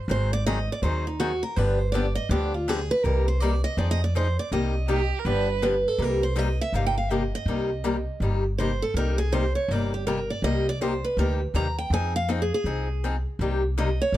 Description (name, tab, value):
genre	acoustic string swing (jazz manouche)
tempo	162 BPM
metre	4/4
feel	swing 63% on 8ths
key	C minor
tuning	A4 = 440 Hz
part	picked steel-string acoustic guitar	melody	0.1-14.2 s	Eb4 to Bb5	-28 LUFS	right 2 dB	plate reverb
part	picked steel-string acoustic guitar	accompaniment	0.1-14.2 s	C3 to Ab4	-28 LUFS	left 3 dB	none
part	upright bass	bass	0.1-14.2 s	G1 to F2	-26 LUFS	equal	none
part	warm violin	second line	4.9-5.6 s	G4 to B4	-29 LUFS	right 8 dB	none
room	light reverb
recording	dark, warm production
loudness	-23 LUFS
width	side -14 dB against mid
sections	0.0-6.0 A section; 6.0-14.2 A section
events	steel-string acoustic guitar solo 0.0-14.2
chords	0.1 Ab7; 1.6 G7; 3.0 Cm7; 3.8 Fm7; 4.5 Cm7; 5.3 G7; 6.0 Cm7; 11.9 Fm7; 13.4 Cm7